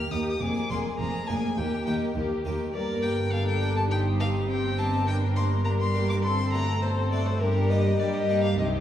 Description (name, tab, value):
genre	classical, baroque-style concerto movement with solo episodes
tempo	103 BPM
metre	4/4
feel	straight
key	G minor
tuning	A4 = 440 Hz
part	rich chamber violin section	melody	0.0-8.8 s	G4 to C5	-38 LUFS	left 5 dB	none
part	rich violin	melody	0.0-8.7 s	Bb4 to F6	-31 LUFS	left 3 dB	none
part	rich chamber violin section	second line	0.0-8.8 s	G4 to Bb4	-34 LUFS	left 1 dB	none
part	harpsichord	accompaniment	0.0-8.8 s	Eb2 to Ab4	-34 LUFS	equal	none
part	rich chamber viola section	accompaniment	0.0-8.8 s	Bb3 to Eb4	-33 LUFS	equal	none
part	rich chamber cello section	bass	0.1-8.8 s	Eb2 to G3	-29 LUFS	right 1 dB	none
part	warm symphonic double bass section	bass	0.1-8.8 s	F1 to G2	-30 LUFS	right 1 dB	none
room	wet recital hall reverb, RT60 1.5 s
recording	heard from further back in the room, small room reverb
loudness	-24 LUFS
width	side -11 dB against mid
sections	0.0-8.8 A section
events	none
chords	0.4 Bb7/F; 1.6 Eb; 2.7 Gm; 3.9 Cm/G; 5.1 Gm; 6.2 D7/G; 7.4 Gm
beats	| 0.41 0.99 1.57 2.16 | 2.74 3.33 3.91 4.49 | 5.08 5.66 6.25 6.83 | 7.42 8.00 8.59